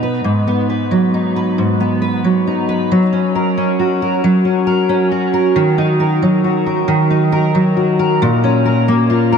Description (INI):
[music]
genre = pop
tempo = 45 BPM (dotted quarters)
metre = 6/8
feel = straight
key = unclear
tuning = A4 = 440 Hz
[part]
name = fingerpicked steel-string acoustic guitar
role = solo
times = 0.0-9.4 s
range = G#2 to B4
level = -12 LUFS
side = equal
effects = analog chorus, diffuse ambient delay
[sound]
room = wet huge ambient reverb, RT60 8.0 s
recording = dreamy mix soaked in reverb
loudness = -12 LUFS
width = side -6 dB against mid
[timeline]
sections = 0.3-9.4 A section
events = none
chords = 0.3 G#m7; 2.9 F#; 5.6 D#m; 8.2 A#m